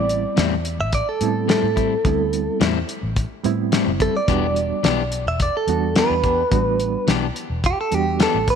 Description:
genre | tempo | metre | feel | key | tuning
straight-eighth soul blues | 107 BPM | 4/4 | straight | E minor | A4 = 439 Hz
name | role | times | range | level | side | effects
direct-recorded clean electric guitar | melody | 0.0-8.6 s | G4 to E5 | -22 LUFS | right 2 dB | phaser
bright reed electric piano | accompaniment | 0.0-8.4 s | G3 to F#4 | -25 LUFS | right 15 dB | overdrive, fast tremolo
vintage muted fingered electric bass | bass | 0.0-8.6 s | E1 to A2 | -25 LUFS | equal | none
cloth-damped thuddy drum kit | drums | 0.1-8.6 s | hi-hat, kick drum, snare drum | -22 LUFS | equal | none
electric guitar at the edge of break-up | stabs | 0.4-8.4 s | A2 to G4 | -25 LUFS | left 12 dB | none
room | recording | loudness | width
light reverb, small room ambience | 1960s-style stereo with parts hard left and right | -18 LUFS | side -7 dB against mid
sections
0.0-8.6 A section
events
none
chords
0.0 Am7; 4.3 Em7

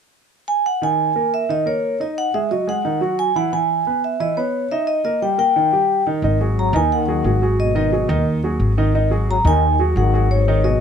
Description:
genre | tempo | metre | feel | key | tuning
jazz | 177 BPM | 4/4 | straight | G# minor | A4 = 439 Hz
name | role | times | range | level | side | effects
vibraphone with medium mallets | melody | 0.5-10.8 s | C#5 to A#5 | -19 LUFS | equal | none
warm concert grand piano | accompaniment | 0.8-10.8 s | D#3 to D#5 | -22 LUFS | right 3 dB | none
upright bass | bass | 6.2-10.7 s | G#1 to D#2 | -18 LUFS | left 1 dB | none
breathy trombone | second line | 6.6-10.8 s | G#2 to F#3 | -25 LUFS | left 9 dB | none
room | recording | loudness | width
light reverb | none | -16 LUFS | side -7 dB against mid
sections
0.8-6.2 A section; 6.2-10.8 B section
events
none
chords
0.0 N.C.; 0.8 D#7sus4; 2.2 G#5; 3.5 C#m7; 4.9 D#; 6.2 G#7(no3)

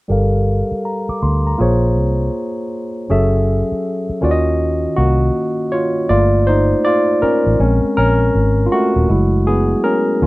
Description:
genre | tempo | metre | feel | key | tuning
R&B | 80 BPM | 4/4 | swing 64% on 16ths | unclear | A4 = 440 Hz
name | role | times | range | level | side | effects
barky tine electric piano | accompaniment | 0.1-10.3 s | Eb3 to D6 | -16 LUFS | equal | overdrive, low-pass filter
vintage muted fingered electric bass | bass | 0.1-10.3 s | Eb1 to Eb2 | -16 LUFS | equal | none
room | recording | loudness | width
little or no reverb | rough home demo mix | -14 LUFS | side -19 dB against mid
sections
0.1-6.1 A section; 6.1-10.3 B section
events
filter sweep on tine electric piano 0.1-6.1; tine electric piano solo 6.1-10.3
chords
0.1 Gm9; 1.6 Bbm9; 3.1 F#m9; 4.2 Ebm9; 6.1 Gm9; 7.6 Bbm9; 9.1 F#m9

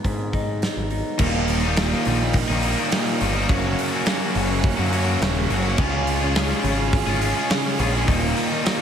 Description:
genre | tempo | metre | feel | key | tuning
quiet-loud alternative rock | 104 BPM | 4/4 | straight | unclear | A4 = 440 Hz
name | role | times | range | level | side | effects
electric guitar through a small old amp | arpeggios | 0.0-1.2 s | Ab2 to Eb4 | -30 LUFS | left 1 dB | phaser, tape echo
growling picked electric bass | bass | 0.0-8.3 s | Eb1 to Ab2 | -24 LUFS | equal | overdrive
big rock drum kit | drums | 0.0-8.8 s | crash cymbal, hi-hat, kick drum, snare drum | -24 LUFS | equal | none
tonewheel organ | sustained chords | 1.2-8.8 s | Ab4 to G5 | -32 LUFS | equal | slow rotary speaker, overdrive
cranked stack guitar | riff | 1.2-8.8 s | Eb2 to Ab4 | -25 LUFS | left 11 dB | overdrive
fuzz guitar | riff | 1.2-8.8 s | Eb2 to Ab4 | -25 LUFS | right 10 dB | distortion
room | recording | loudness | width
light reverb | none | -19 LUFS | side -8 dB against mid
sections
0.0-1.2 A section; 1.2-8.8 B section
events
none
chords
0.0 Abm; 1.2 Eb; 3.5 Gb; 5.8 Db; 8.1 Eb

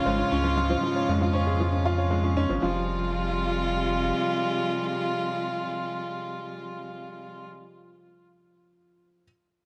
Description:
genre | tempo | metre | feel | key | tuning
piano and strings electronica | 117 BPM | 4/4 | straight | F minor | A4 = 440 Hz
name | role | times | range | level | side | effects
warm viola | melody | 0.0-7.5 s | F4 | -33 LUFS | equal | delay
dark string quartet | sustained chords | 0.0-7.5 s | Ab2 to F4 | -33 LUFS | equal | none
warm upright piano | riff | 0.0-9.2 s | F3 to Db5 | -31 LUFS | equal | delay
soft round pluck | arpeggios | 0.1-2.9 s | C4 to F5 | -39 LUFS | equal | none
warm sub bass | bass | 0.1-4.1 s | F1 to F2 | -30 LUFS | equal | none
room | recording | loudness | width
moderate recital hall reverb, RT60 1.9 s, small room ambience | none | -26 LUFS | mono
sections
0.0-2.6 A section; 2.6-6.7 B section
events
drop 0.0-2.6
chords
0.0 Db; 2.6 Fmadd9

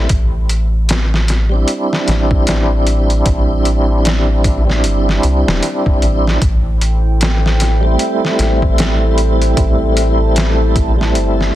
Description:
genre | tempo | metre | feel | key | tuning
trip hop | 76 BPM | 4/4 | swing 59% on 16ths | unclear | A4 = 439 Hz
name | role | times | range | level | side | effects
tonewheel organ | accompaniment | 0.0-11.6 s | G3 to E4 | -17 LUFS | right 1 dB | chorus vibrato, slow rotary speaker, tremolo, vintage 12-bit sampler grit, tape echo
round analog bass | bass | 0.0-11.5 s | E1 to C2 | -14 LUFS | equal | none
trip hop sampler-style drum kit | drums | 0.1-11.6 s | hi-hat, kick drum, snare drum | -17 LUFS | equal | overdrive, small room reverb
warbly tape-like pad | sustained chords | 6.7-11.6 s | E4 to A5 | -22 LUFS | left 1 dB | chorus, built-in reverb
room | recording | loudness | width
little or no reverb | dense, heavily limited modern master | -12 LUFS | side -14 dB against mid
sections
0.0-11.6 A section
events
none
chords
0.1 Cadd9/A; 6.4 Am7

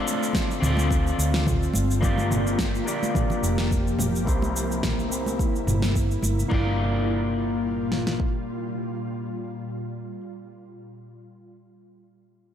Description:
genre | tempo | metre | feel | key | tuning
sunset chillout | 107 BPM | 4/4 | swing 55% on 16ths | G dorian | A4 = 440 Hz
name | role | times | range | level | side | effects
electric guitar at the edge of break-up | accompaniment | 0.0-10.2 s | Bb3 to D5 | -28 LUFS | left 2 dB | auto-pan, low-pass filter, ping-pong delay, slapback echo
ethereal airy pad | sustained chords | 0.0-9.5 s | Bb2 to G4 | -32 LUFS | right 1 dB | ensemble chorus, built-in reverb
deep house drum kit | drums | 0.1-6.5 s | cabasa, snare drum, toms | -29 LUFS | equal | none
deep house drum kit | drums | 0.3-8.3 s | kick drum, snare drum | -26 LUFS | equal | none
congas | percussion | 0.3-6.3 s | none | -35 LUFS | right 2 dB | none
hollow-body short-scale fingered electric bass | bass | 0.6-8.2 s | F1 to D2 | -26 LUFS | equal | none
room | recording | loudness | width
moderate lush hall reverb, RT60 2.4 s | big arena sound | -22 LUFS | side -9 dB against mid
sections
0.0-6.5 A section; 6.5-8.8 B section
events
filter sweep on clean electric guitar 0.0-6.5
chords
0.0 Dm7; 2.0 Gm7; 4.3 C7; 6.5 Gm7

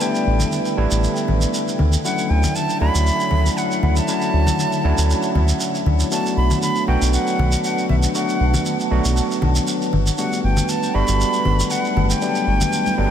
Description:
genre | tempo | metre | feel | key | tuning
deep house | 118 BPM | 4/4 | swing 54% on 16ths | B minor | A4 = 444 Hz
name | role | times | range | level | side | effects
silver concert flute | melody | 0.0-13.1 s | E5 to B5 | -25 LUFS | equal | analog delay
dark analog pad | sustained chords | 0.0-13.1 s | D3 to A5 | -27 LUFS | equal | chorus, phaser
overdriven tine electric piano | stabs | 0.0-13.1 s | F#3 to F#4 | -22 LUFS | moving between left 4 dB and right 4 dB | auto-pan, analog delay
shekere | percussion | 0.0-13.0 s | none | -28 LUFS | right 3 dB | none
round analog bass | bass | 0.3-13.1 s | G1 to D2 | -18 LUFS | equal | tube saturation
congas | percussion | 0.4-13.0 s | none | -27 LUFS | left 3 dB | none
room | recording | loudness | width
moderate huge ambient reverb, RT60 9.1 s | dreamy mix soaked in reverb | -16 LUFS | side -9 dB against mid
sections
0.0-13.1 A section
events
none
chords
0.0 A9sus4; 1.8 Dmaj9; 6.1 Bm7; 9.9 Gmaj9

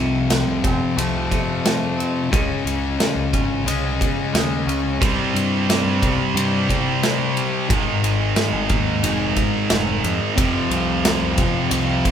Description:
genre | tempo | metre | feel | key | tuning
quiet-loud alternative rock | 89 BPM | 4/4 | straight | unclear | A4 = 435 Hz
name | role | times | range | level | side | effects
twangy electric guitar | arpeggios | 0.0-5.0 s | F2 to Db4 | -28 LUFS | right 3 dB | none
thick fuzz guitar | riff | 0.0-12.1 s | F2 to Db4 | -22 LUFS | left 4 dB | distortion
growling picked electric bass | bass | 0.0-12.0 s | F1 to G2 | -25 LUFS | right 1 dB | overdrive
big rock drum kit | drums | 0.3-12.1 s | kick drum, ride cymbal, snare drum | -23 LUFS | right 1 dB | none
heavy high-gain guitar | riff | 5.0-12.1 s | F2 to C4 | -22 LUFS | right 8 dB | distortion
room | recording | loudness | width
light reverb | band playing live in one room | -17 LUFS | side -8 dB against mid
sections
0.0-12.1 A section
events
none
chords
0.0 F; 2.3 Db; 5.0 C5; 7.7 Ab5; 10.4 F5

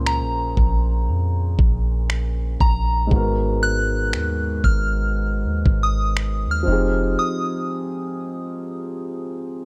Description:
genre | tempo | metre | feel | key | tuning
contemporary R&B | 59 BPM | 4/4 | swing 58% on 16ths | unclear | A4 = 440 Hz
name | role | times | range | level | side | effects
soft synth bell | melody | 0.0-9.7 s | Bb5 to Gb6 | -28 LUFS | equal | chorus
dark grand piano | accompaniment | 0.0-9.7 s | Ab2 to C5 | -29 LUFS | equal | none
soft 808-style bass | bass | 0.0-7.2 s | F1 to F2 | -24 LUFS | equal | none
dusty soul sampler-style drum kit | drums | 0.1-6.4 s | finger snaps, kick drum | -22 LUFS | equal | none
room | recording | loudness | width
little or no reverb | none | -21 LUFS | mono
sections
0.0-9.7 A section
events
break 7.2-9.7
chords
0.0 Bbm9; 3.1 Abm9; 6.7 Fm9

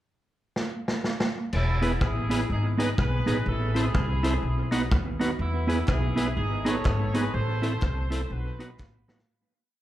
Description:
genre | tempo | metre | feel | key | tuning
ska | 124 BPM | 4/4 | swing 60% on 8ths | E major | A4 = 440 Hz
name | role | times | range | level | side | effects
vintage drum kit | drums | 0.6-9.3 s | crash cymbal, hi-hat, kick drum, rim click, snare drum | -29 LUFS | equal | tape echo
clear horn section | melody | 1.5-8.8 s | B3 to C#5 | -33 LUFS | equal | tape echo, slapback echo
upright bass | bass | 1.5-9.2 s | E1 to E2 | -27 LUFS | equal | none
mellow electric guitar | accompaniment | 1.8-9.2 s | B3 to C5 | -30 LUFS | right 3 dB | tremolo, tape echo, slapback echo
overdriven tonewheel organ | stabs | 1.8-9.2 s | D#4 to C5 | -33 LUFS | left 3 dB | slapback echo
group handclap | percussion | 5.9-8.9 s | none | -49 LUFS | right 3 dB | none
room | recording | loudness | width
light reverb | live gig heard through the venue's PA, club reverb | -24 LUFS | side -14 dB against mid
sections
0.0-1.5 pickup bar; 1.5-9.3 head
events
drum fill 0.6-1.5, 8.8-9.3; fade-out 7.3-9.3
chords
0.0 N.C.; 1.5 E; 2.5 G#m; 3.5 Am; 4.4 B; 5.4 E; 6.4 G#m; 7.3 Am; 8.3 B

